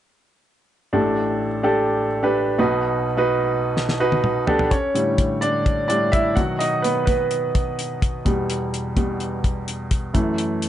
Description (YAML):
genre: piano-driven pop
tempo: 127 BPM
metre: 4/4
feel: straight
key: A mixolydian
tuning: A4 = 440 Hz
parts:
  - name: clear baby grand piano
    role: accompaniment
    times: 0.9-10.7 s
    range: A1 to F#5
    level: -20 LUFS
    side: right 1 dB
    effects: none
  - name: damped 70s drum kit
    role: drums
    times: 3.8-10.7 s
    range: hi-hat, kick drum, snare drum, toms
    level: -22 LUFS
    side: left 1 dB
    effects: none
room: light reverb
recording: nothing above 10.8 kHz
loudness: -19 LUFS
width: side -11 dB against mid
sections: 0.9-4.7 A section; 4.7-10.7 B section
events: drum fill 3.8-4.7; grand piano solo 4.7-10.7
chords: 0.9 A7sus4; 2.6 B; 4.5 A7sus4; 6.4 B; 8.3 Em; 10.1 F#m7